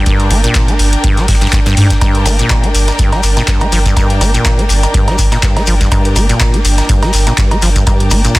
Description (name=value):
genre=acid house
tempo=123 BPM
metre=4/4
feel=swing 55% on 16ths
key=G minor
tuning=A4 = 440 Hz
part: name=acid bass, saw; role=riff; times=0.0-8.4 s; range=G2 to Bb3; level=-16 LUFS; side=equal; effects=tube saturation, sidechain pumping, tape echo
part: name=rich studio string section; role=texture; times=0.0-8.4 s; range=D4 to G5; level=-19 LUFS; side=equal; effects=sidechain pumping
part: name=booming analog drum machine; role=drums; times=0.1-8.4 s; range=cowbell, handclaps, hi-hat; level=-18 LUFS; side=right 1 dB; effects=studio reverb
part: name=electronic kick drum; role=drums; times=0.1-8.4 s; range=none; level=-13 LUFS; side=equal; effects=studio reverb
part: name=warm soul drum kit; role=drums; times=0.1-8.4 s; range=ride cymbal, snare drum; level=-26 LUFS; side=left 2 dB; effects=none
part: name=warm sub bass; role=bass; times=0.3-8.3 s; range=G1 to G2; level=-12 LUFS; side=equal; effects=sidechain pumping
part: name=shekere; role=percussion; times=2.0-8.4 s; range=none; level=-23 LUFS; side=left 4 dB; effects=none
room=light reverb, small room ambience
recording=dense, heavily limited modern master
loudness=-9 LUFS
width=side -20 dB against mid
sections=0.0-8.4 A section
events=none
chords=0.0 Gm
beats=| 0.06 0.55 1.04 1.53 | 2.02 2.50 2.99 3.48 | 3.97 4.45 4.94 5.43 | 5.92 6.41 6.89 7.38 | 7.87 8.36